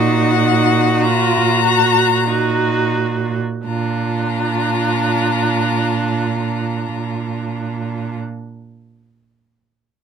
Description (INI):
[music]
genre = classical, slow romantic movement for string quartet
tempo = 40-55 BPM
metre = 3/4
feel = rubato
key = Bb major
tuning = A4 = 438 Hz
[part]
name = rich violin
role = melody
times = 0.0-8.1 s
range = Gb5 to Bb5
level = -20 LUFS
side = left 11 dB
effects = none
[part]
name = dark violin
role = second line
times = 0.0-8.1 s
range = Eb4 to Gb4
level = -23 LUFS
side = left 2 dB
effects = none
[part]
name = warm viola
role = accompaniment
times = 0.0-8.1 s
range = D4 to Gb4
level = -21 LUFS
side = right 4 dB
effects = none
[part]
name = warm cello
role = bass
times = 0.0-8.2 s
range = Bb2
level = -20 LUFS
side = right 5 dB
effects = none
[sound]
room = moderate studio ambience, RT60 0.5 s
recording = minimal, uncompressed stereo recording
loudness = -15 LUFS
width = side -7 dB against mid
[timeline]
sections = 0.0-3.7 A section; 3.7-7.5 B section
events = slowing down 0.0-3.7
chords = 0.0 Ebm/Bb; 3.7 Bb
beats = 1.04 2.28 | 3.67 4.94 6.21